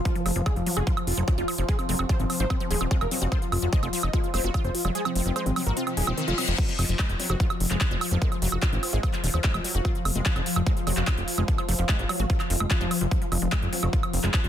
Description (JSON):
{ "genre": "psychedelic trance", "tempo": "147 BPM", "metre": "4/4", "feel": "straight", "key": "F phrygian", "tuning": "A4 = 440 Hz", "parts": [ { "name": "evolving wavetable pad", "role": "sustained chords", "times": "0.0-14.5 s", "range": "F3", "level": "-33 LUFS", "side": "left 3 dB", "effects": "phaser, built-in reverb, sidechain pumping" }, { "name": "ethereal airy pad", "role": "texture", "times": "1.2-14.5 s", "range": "F4 to Bb5", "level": "-40 LUFS", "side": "right 2 dB", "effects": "ensemble chorus, built-in reverb, sidechain pumping" }, { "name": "wide unison lead", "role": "melody", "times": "0.1-6.5 s", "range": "F3 to Eb5", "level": "-31 LUFS", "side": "left 1 dB", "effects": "phaser, sidechain pumping, ping-pong delay" }, { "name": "wide unison pluck", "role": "riff", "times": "0.1-14.5 s", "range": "Eb3 to Gb4", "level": "-34 LUFS", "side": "moving between left 6 dB and right 5 dB", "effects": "auto-pan, sidechain pumping, ping-pong delay" }, { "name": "big-room dance drum kit", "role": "drums", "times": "0.1-14.5 s", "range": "crash cymbal, handclaps, hi-hat, woodblock", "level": "-30 LUFS", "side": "right 2 dB", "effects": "none" }, { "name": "electronic kick drum", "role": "drums", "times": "0.1-14.4 s", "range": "none", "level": "-25 LUFS", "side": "equal", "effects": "none" }, { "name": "fat analog bass", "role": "bass", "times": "0.3-14.5 s", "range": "Eb1 to Ab1", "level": "-26 LUFS", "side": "equal", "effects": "none" }, { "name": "reverse cymbal", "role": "sound effects", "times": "5.9-6.6 s", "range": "none", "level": "-32 LUFS", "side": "left 4 dB", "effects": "none" }, { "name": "formant-sweep wobble bass", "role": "second line", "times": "7.2-9.0, 13.7-13.9 s", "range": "Bb3 to C4", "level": "-42 LUFS", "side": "left 4 dB", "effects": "none" } ], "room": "little or no reverb", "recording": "dense, heavily limited modern master", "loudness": "-23 LUFS", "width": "side -10 dB against mid", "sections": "0.0-14.5 A section", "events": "fade-in on ambient pad 0.0-14.5; kick drops out 5.0-6.6; reverse cymbal 5.9-6.6", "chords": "0.0 F5" }